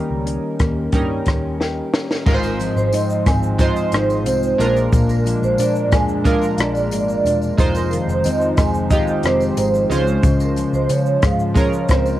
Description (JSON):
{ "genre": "indie pop, bedroom pop", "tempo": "90 BPM", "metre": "4/4", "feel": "straight", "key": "Ab major", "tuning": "A4 = 440 Hz", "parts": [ { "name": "chorused retro synth keys", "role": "accompaniment", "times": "0.0-12.2 s", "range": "G3 to C5", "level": "-24 LUFS", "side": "right 3 dB", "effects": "cassette tape" }, { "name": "mellow electric guitar", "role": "accompaniment", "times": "0.0-12.2 s", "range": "F2 to G4", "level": "-22 LUFS", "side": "left 4 dB", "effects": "wide subtle chorus, warbly pitch drift, cassette tape" }, { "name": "vintage muted picked electric bass", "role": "bass", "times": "0.1-12.2 s", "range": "Fb1 to Db3", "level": "-24 LUFS", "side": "equal", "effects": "none" }, { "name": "compact cocktail drum kit", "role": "drums", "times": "0.3-12.2 s", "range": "crash cymbal, hi-hat, kick drum, rim click, shaker, snare drum", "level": "-19 LUFS", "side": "equal", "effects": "none" }, { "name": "hollow soft pad", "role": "sustained chords", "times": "2.3-12.2 s", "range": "F3 to F4", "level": "-28 LUFS", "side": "right 1 dB", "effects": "chorus, cassette tape" }, { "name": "tambourine", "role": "percussion", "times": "2.3-12.2 s", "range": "none", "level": "-40 LUFS", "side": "left 5 dB", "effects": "none" }, { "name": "vibraphone with medium mallets", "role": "second line", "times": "2.4-12.0 s", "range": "Bb4 to Ab5", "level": "-21 LUFS", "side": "right 3 dB", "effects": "ensemble chorus, cassette tape, tape echo" } ], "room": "light reverb, small room ambience", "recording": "home recording on cassette", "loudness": "-15 LUFS", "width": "side -14 dB against mid", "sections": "0.0-2.3 A section; 2.3-12.2 B section", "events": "drum fill 1.6-2.3", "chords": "0.0 Eb7; 2.3 Ab6; 4.6 Bb7; 7.6 Fm7; 9.9 Dbmaj7" }